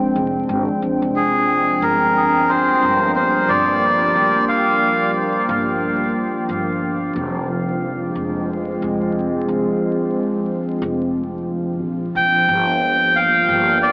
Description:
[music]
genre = ambient dub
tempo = 90 BPM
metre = 4/4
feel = swing 60% on 16ths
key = F dorian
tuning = A4 = 438 Hz
[part]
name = warbly tape-like pad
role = sustained chords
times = 0.0-13.9 s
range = F3 to G5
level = -20 LUFS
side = equal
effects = chorus, built-in reverb
[part]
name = upright bass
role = bass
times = 0.2-13.9 s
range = F1 to F2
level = -28 LUFS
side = equal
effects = tube saturation
[part]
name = melodica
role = melody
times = 1.2-5.1, 12.2-13.9 s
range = Ab4 to G5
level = -17 LUFS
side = equal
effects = dub echo
[sound]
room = wet huge ambient reverb, RT60 4.7 s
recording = dreamy mix soaked in reverb, vinyl crackle, AM radio sound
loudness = -16 LUFS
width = side -25 dB against mid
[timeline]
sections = 0.0-12.5 A section; 12.5-13.9 B section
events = none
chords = 0.0 Fm69; 1.8 Gm7; 7.2 Fm69; 12.5 Gm7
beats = 0.49 1.15 | 1.82 2.49 3.15 3.82 | 4.49 5.15 5.82 6.49 | 7.15 7.82 8.49 9.15 | 9.82 10.49 11.15 11.82 | 12.49 13.15 13.82

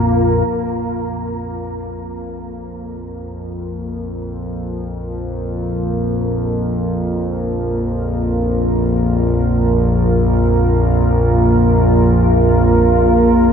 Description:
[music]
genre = dark ambient drone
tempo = free time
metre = none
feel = none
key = unclear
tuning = A4 = 440 Hz
[part]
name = deep dark ambient pad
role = sustained chords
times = 0.0-13.5 s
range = Bb3 to Bb4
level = -18 LUFS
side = right 1 dB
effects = chorus, built-in reverb
[part]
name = analog drone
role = drone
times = 0.0-13.5 s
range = Bb1 to F2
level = -18 LUFS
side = left 1 dB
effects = chorus
[part]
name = wind-like tuned noise texture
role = texture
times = 0.0-0.5 s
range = Bb4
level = -30 LUFS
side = right 3 dB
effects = built-in reverb
[sound]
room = wet huge ambient reverb, RT60 8.2 s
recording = none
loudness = -14 LUFS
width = side -7 dB against mid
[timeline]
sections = 0.5-13.5 A section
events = fade-in on synth drone 0.5-13.5; fade-in on ambient pad 0.5-13.5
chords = 0.5 Bb5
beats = free time

